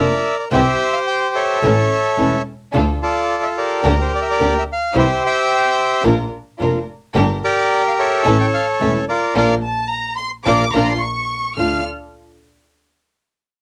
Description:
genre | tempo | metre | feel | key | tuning
tango | 109 BPM | 4/4 | rubato | D minor | A4 = 436 Hz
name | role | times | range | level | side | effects
bandoneon | melody | 0.0-11.8 s | F4 to G5 | -19 LUFS | equal | cassette tape
flamenco guitar | accompaniment | 0.0-11.8 s | C3 to G4 | -23 LUFS | equal | none
dark studio string section | stabs | 0.0-11.8 s | C4 to C5 | -23 LUFS | equal | none
rich double bass | bass | 0.0-11.8 s | E1 to D2 | -24 LUFS | equal | tube saturation
rich symphonic violin section | second line | 9.6-11.8 s | A5 to F6 | -23 LUFS | equal | none
room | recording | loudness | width
light reverb | home recording on cassette | -18 LUFS | mono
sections
0.0-11.6 A section; 11.6-13.6 B section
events
band accent 9.4-11.6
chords
0.0 Bb; 0.5 C; 1.6 A; 2.7 Dm; 3.8 Gm/D; 4.9 C; 6.1 Bb; 7.2 Gm; 8.3 A; 9.4 Bb; 11.0 N.C.; 11.6 Dm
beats
| 0.52 1.07 1.62 2.18 | 2.73 3.29 3.84 4.39 | 4.95 5.50 6.05 6.60 | 7.15 7.70 8.26 8.81 | 9.36 9.91 10.47 11.02 | 11.58

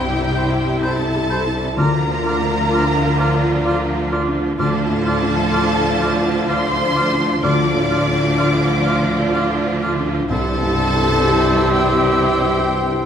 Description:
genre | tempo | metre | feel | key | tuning
cinematic, emotional film score for orchestra | 63 BPM | 3/4 | rubato | D minor | A4 = 435 Hz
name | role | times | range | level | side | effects
rich symphonic violin section | melody | 0.0-13.1 s | G5 to D6 | -24 LUFS | left 1 dB | none
dark cor anglais | second line | 0.0-13.1 s | C5 to D5 | -28 LUFS | right 4 dB | none
warm clarinet | second line | 0.0-13.1 s | E4 to G4 | -28 LUFS | left 2 dB | none
warm symphonic violin section | second line | 0.0-13.1 s | G4 to D5 | -25 LUFS | left 2 dB | none
felt-muted upright piano | accompaniment | 0.0-13.1 s | C2 to F5 | -25 LUFS | left 1 dB | none
warm symphonic viola section | accompaniment | 0.0-13.1 s | F3 to F4 | -24 LUFS | right 2 dB | none
mellow French horn section | sustained chords | 0.0-13.1 s | E3 to G4 | -26 LUFS | left 2 dB | none
concert harp | arpeggios | 0.0-13.1 s | C3 to F6 | -27 LUFS | left 4 dB | none
rich symphonic cello section | bass | 0.0-13.1 s | C3 to D3 | -25 LUFS | right 1 dB | none
rich symphonic double bass section | bass | 0.0-13.1 s | C2 to D2 | -24 LUFS | right 2 dB | none
silver concert flute | second line | 0.3-13.1 s | E6 to G6 | -26 LUFS | equal | none
timpani | percussion | 1.8-3.1 s | D3 | -25 LUFS | left 2 dB | none
room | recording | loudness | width
wet scoring stage reverb, RT60 1.4 s | vinyl crackle | -15 LUFS | side -8 dB against mid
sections
0.0-13.1 A section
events
none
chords
0.0 C; 1.8 Bb/D; 4.6 Dm; 10.3 C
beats
0.83 | 1.78 2.72 3.66 | 4.59 5.54 6.49 | 7.44 8.39 9.35 | 10.31 11.27 12.25

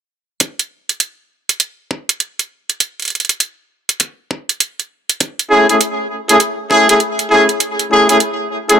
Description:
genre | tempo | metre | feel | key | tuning
glitch hop | 100 BPM | 4/4 | swing 63% on 16ths | unclear | A4 = 440 Hz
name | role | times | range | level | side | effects
electronic hi-hat | drums | 0.4-8.8 s | none | -14 LUFS | right 3 dB | none
electronic kick drum | drums | 0.4-6.9 s | none | -22 LUFS | equal | high-pass filter on kick, high-pass filter on room
bright horn section | stabs | 5.5-8.8 s | A3 to G#4 | -11 LUFS | equal | sidechain pumping, tape echo
room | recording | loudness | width
moderate plate reverb, RT60 1.6 s, digital ambience | none | -13 LUFS | side -8 dB against mid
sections
0.4-8.8 A section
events
none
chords
0.4 Amaj7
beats
| 0.41 1.01 1.61 2.21 | 2.81 3.41 4.01 4.61 | 5.21 5.81 6.41 7.01 | 7.61 8.21

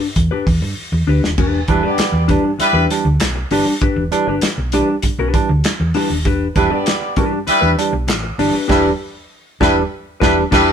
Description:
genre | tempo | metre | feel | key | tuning
funk | 98 BPM | 4/4 | straight | E minor | A4 = 440 Hz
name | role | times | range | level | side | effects
clean electric guitar | accompaniment | 0.0-10.7 s | D4 to B4 | -20 LUFS | left 6 dB | none
hollow-body short-scale fingered electric bass | bass | 0.2-10.7 s | D#1 to G2 | -19 LUFS | equal | none
warm soul drum kit | drums | 0.2-10.7 s | crash cymbal, handclaps, hi-hat, kick drum, snare drum | -20 LUFS | equal | none
mellow horn section | second line | 1.7-2.8, 6.6-10.7 s | G3 to D5 | -17 LUFS | equal | none
barky tine electric piano | stabs | 1.7-10.7 s | E3 to D4 | -19 LUFS | right 5 dB | none
room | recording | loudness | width
light reverb | band playing live in one room | -14 LUFS | side -8 dB against mid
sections
0.0-10.7 A section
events
drum fill 0.8-1.4; band accent 8.7-10.7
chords
0.0 Em7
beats
0.16 0.77 | 1.38 1.99 2.60 3.21 | 3.82 4.43 5.04 5.64 | 6.25 6.86 7.47 8.08 | 8.69 9.30 9.91 10.52

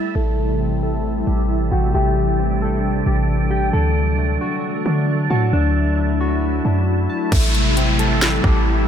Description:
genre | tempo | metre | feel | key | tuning
hip hop, atmospheric cloud-rap | 134 BPM | 4/4 | half-time | A dorian | A4 = 438 Hz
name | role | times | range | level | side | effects
mellow electric guitar | melody | 0.0-7.3 s | D4 to A4 | -25 LUFS | left 2 dB | low-pass filter, ping-pong delay
glassy FM pad | sustained chords | 0.0-8.9 s | C3 to E4 | -21 LUFS | right 1 dB | ensemble chorus, built-in reverb, low-pass filter
soft electric-piano-like synth keys | arpeggios | 0.2-8.9 s | D3 to A5 | -28 LUFS | left 3 dB | chorus, low-pass filter, ping-pong delay
warm 808-style bass | bass | 0.2-8.9 s | A1 to D3 | -19 LUFS | equal | none
trap drum kit | drums | 7.3-8.5 s | crash cymbal, hi-hat, kick drum, snare drum | -20 LUFS | equal | none
downlifter | sound effects | 7.3-8.9 s | none | -23 LUFS | equal | none
room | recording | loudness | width
digital ambience | none | -16 LUFS | side -8 dB against mid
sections
0.2-7.3 A section; 7.3-8.9 B section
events
filter sweep 0.2-7.3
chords
0.2 Am7; 3.7 D; 7.3 Am7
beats
| 0.15 0.60 1.05 1.50 | 1.95 2.39 2.84 3.29 | 3.74 4.18 4.63 5.08 | 5.53 5.97 6.42 6.87 | 7.32 7.77 8.21 8.66

